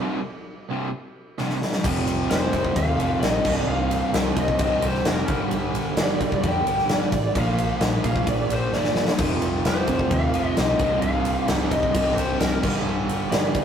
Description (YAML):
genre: hard rock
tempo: 131 BPM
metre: 4/4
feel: straight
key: unclear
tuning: A4 = 438 Hz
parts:
  - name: cranked stack guitar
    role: riff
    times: 0.0-13.6 s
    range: C2 to Bb3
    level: -30 LUFS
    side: left 6 dB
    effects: overdrive
  - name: overdriven semi-hollow guitar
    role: riff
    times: 0.0-13.6 s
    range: C2 to Bb3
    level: -28 LUFS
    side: right 8 dB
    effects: tremolo
  - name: huge arena drum kit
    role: drums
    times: 1.4-13.6 s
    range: crash cymbal, kick drum, ride cymbal, snare drum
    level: -24 LUFS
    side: left 1 dB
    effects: none
  - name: overdriven tonewheel organ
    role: sustained chords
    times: 1.8-13.6 s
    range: none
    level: barely audible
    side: none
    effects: none
  - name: picked electric bass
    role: bass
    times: 1.8-13.6 s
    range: C1 to F2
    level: -29 LUFS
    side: equal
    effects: none
  - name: lead guitar through a small cranked amp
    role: melody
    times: 2.3-13.6 s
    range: Bb4 to G5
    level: -26 LUFS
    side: left 1 dB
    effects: overdrive
room: moderate stone room reverb, RT60 1.0 s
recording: rough rehearsal-room recording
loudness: -20 LUFS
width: side -8 dB against mid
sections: 0.0-1.8 A section; 1.8-13.6 B section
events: break 0.0-1.8; drum fill 1.4-1.8, 8.7-9.2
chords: 0.0 C5; 1.8 F5; 3.5 C5; 5.3 G5; 7.4 Bb5; 9.2 F5; 10.8 C5; 12.6 G5